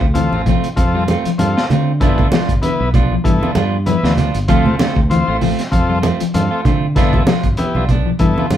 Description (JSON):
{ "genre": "afrobeat", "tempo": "97 BPM", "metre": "4/4", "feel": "swing 55% on 16ths", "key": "G mixolydian", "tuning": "A4 = 439 Hz", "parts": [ { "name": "mellow electric guitar", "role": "arpeggios", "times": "0.0-8.6 s", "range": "D3 to G3", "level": "-21 LUFS", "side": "left 6 dB", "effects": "spring reverb" }, { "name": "clean electric guitar", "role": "stabs", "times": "0.0-8.6 s", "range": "F3 to F4", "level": "-21 LUFS", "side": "right 6 dB", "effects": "none" }, { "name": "fingered electric bass", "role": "bass", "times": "0.0-8.6 s", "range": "G1 to D3", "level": "-18 LUFS", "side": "equal", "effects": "none" }, { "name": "crunchy breakbeat drum kit", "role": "drums", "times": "0.0-8.6 s", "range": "hi-hat, kick drum, snare drum", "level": "-19 LUFS", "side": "equal", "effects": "none" }, { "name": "combo organ", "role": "accompaniment", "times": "0.1-8.5 s", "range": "B3 to C5", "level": "-20 LUFS", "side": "left 3 dB", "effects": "none" }, { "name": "congas", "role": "percussion", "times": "0.2-8.6 s", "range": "none", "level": "-20 LUFS", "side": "right 2 dB", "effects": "none" } ], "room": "light reverb", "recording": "band playing live in one room", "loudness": "-13 LUFS", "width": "side -11 dB against mid", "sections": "0.0-8.6 A section", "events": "none", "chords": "0.0 Dm7; 2.0 G7; 4.5 Dm7; 7.0 G7", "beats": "0.16 0.78 1.40 | 2.02 2.63 3.25 3.87 | 4.49 5.11 5.73 6.34 | 6.96 7.58 8.20" }